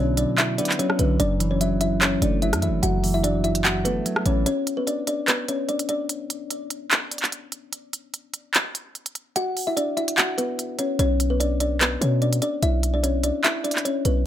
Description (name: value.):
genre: hip hop, trap.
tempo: 147 BPM.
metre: 4/4.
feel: half-time.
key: B minor.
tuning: A4 = 441 Hz.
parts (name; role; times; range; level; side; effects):
kalimba; melody; 0.0-6.1, 9.4-14.2 s; B3 to F#5; -24 LUFS; left 2 dB; low-pass filter, digital delay.
clean electric guitar; accompaniment; 0.0-4.5 s; F#2 to B3; -25 LUFS; right 2 dB; low-pass filter.
hard-hitting 808-style bass; bass; 0.0-4.5, 11.0-14.2 s; F#1 to B2; -24 LUFS; equal; none.
trap drum kit; drums; 0.2-14.2 s; handclaps, hi-hat, rim click; -23 LUFS; right 1 dB; none.
room: digital ambience.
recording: none.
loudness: -20 LUFS.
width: side -11 dB against mid.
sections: 0.0-4.5 A section; 4.5-14.3 B section.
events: break 4.5-11.0.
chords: 0.0 Bm; 1.2 F#m7; 4.5 N.C.; 7.7 F#5; 11.0 Bm.